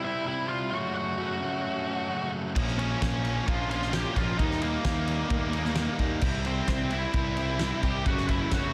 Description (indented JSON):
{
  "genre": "quiet-loud alternative rock",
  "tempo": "131 BPM",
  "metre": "4/4",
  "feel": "straight",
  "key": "unclear",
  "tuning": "A4 = 441 Hz",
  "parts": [
    { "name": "octave-fuzz lead guitar", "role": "melody", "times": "0.0-8.7 s", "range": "Bb3 to G5", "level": "-34 LUFS", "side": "equal", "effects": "distortion" },
    { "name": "fuzz guitar", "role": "riff", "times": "0.0-8.7 s", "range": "Gb2 to E4", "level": "-34 LUFS", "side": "equal", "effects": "distortion, slapback echo" },
    { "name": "heavy high-gain guitar", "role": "riff", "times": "2.6-8.7 s", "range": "Gb2 to E4", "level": "-38 LUFS", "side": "equal", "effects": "distortion, slapback echo" },
    { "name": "fuzz picked electric bass", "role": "bass", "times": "2.6-8.7 s", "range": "Gb1 to Eb2", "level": "-34 LUFS", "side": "equal", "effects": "overdrive" },
    { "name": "loose indie drum kit", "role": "drums", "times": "2.6-8.6 s", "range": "crash cymbal, kick drum, ride cymbal, snare drum", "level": "-33 LUFS", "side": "equal", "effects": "none" }
  ],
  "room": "moderate lush hall reverb, RT60 1.9 s, small room ambience",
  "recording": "big arena sound",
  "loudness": "-28 LUFS",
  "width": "mono",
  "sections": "0.0-8.7 A section",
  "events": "none",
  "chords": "0.0 C; 0.7 Gbm; 2.6 Bbm; 4.4 Eb; 6.2 C; 8.1 Gbm"
}